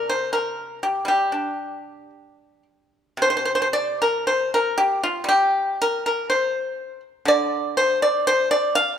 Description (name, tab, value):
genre	chinese traditional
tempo	55-63 BPM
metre	4/4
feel	rubato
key	G yu mode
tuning	A4 = 440 Hz
part	pipa	solo	0.0-9.0 s	C3 to F5	-19 LUFS	equal	none
room	moderate scoring stage reverb, RT60 1.5 s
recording	none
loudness	-19 LUFS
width	side -8 dB against mid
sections	0.0-3.2 A section; 3.2-9.0 B section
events	none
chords	none